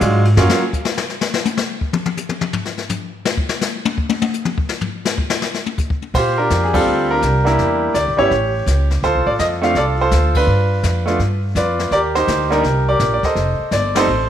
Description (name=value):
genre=jazz piano trio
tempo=166 BPM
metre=4/4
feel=swing 66% on 8ths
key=F# major, Bb major from 6.1 s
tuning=A4 = 440 Hz
part: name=clear grand piano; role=melody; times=0.0-0.6, 6.1-14.3 s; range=F#3 to F5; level=-16 LUFS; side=right 1 dB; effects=none
part: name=upright bass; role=bass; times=0.0-0.5, 6.1-14.3 s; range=F1 to Bb2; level=-18 LUFS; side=equal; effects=none
part: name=jazz brush drum kit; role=drums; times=0.0-14.3 s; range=brushed snare drum, crash cymbal, hi-hat, kick drum, ride cymbal, snare drum, toms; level=-21 LUFS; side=left 4 dB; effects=none
room=moderate echo chamber reverb, RT60 1.4 s, studio reverb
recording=1960s-style stereo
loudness=-15 LUFS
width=side -10 dB against mid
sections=0.0-6.1 A section; 6.1-14.3 B section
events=grand piano solo 0.0-6.1; drum solo 0.4-6.1; band accent 6.7, 10.3, 13.9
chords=0.4 N.C.; 6.1 Bb69; 7.6 Em7b5; 8.3 A7; 9.0 Dm7; 10.5 G7; 11.9 Cm7; 13.4 F7